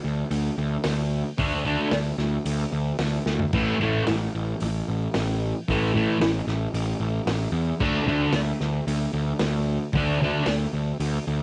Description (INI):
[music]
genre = garage rock duo or trio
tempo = 112 BPM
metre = 4/4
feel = straight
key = unclear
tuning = A4 = 440 Hz
[part]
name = fuzz picked electric bass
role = bass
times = 0.0-11.4 s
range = A1 to E2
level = -27 LUFS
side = equal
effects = overdrive
[part]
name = vintage drum kit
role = drums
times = 0.3-11.1 s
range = crash cymbal, hi-hat, kick drum, snare drum, splash cymbal, toms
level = -34 LUFS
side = equal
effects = cassette tape
[part]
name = thick fuzz guitar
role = riff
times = 1.4-10.4 s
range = A2 to D4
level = -26 LUFS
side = equal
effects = distortion, cassette tape
[sound]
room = little or no reverb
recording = home recording on cassette, nothing above 10.7 kHz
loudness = -25 LUFS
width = mono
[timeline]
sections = 0.0-11.4 A section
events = drum fill 3.3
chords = 0.0 D5; 3.5 A5; 7.8 D5